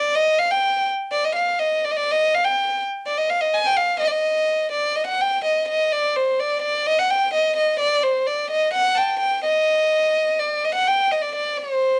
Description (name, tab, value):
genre	klezmer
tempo	126 BPM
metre	2/4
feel	straight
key	Eb major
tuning	A4 = 440 Hz
part	rich violin	solo	0.0-12.0 s	C5 to A5	-21 LUFS	equal	cassette tape
room	moderate studio reverb, RT60 0.6 s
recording	home recording on cassette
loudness	-21 LUFS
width	mono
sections	0.0-5.0 A section; 5.0-12.0 B section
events	speeding up 0.0-12.0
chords	none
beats	| 0.14 0.63 | 1.11 1.60 | 2.08 2.56 | 3.05 3.53 | 4.01 4.49 | 4.97 5.45 | 5.92 6.40 | 6.88 7.35 | 7.83 8.30 | 8.77 9.24 | 9.71 10.18 | 10.65 11.12 | 11.58